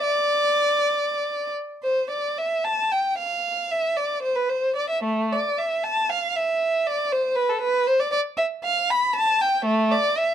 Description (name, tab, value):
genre	classical, baroque-style suite movement for unaccompanied violin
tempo	63-80 BPM (dotted quarters)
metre	6/8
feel	rubato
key	unclear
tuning	A4 = 440 Hz
part	rich violin	solo	0.0-10.3 s	A3 to B5	-21 LUFS	equal	none
room	light reverb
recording	dark, warm production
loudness	-21 LUFS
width	side -9 dB against mid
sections	0.0-1.8 A section; 1.8-10.3 A section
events	none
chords	none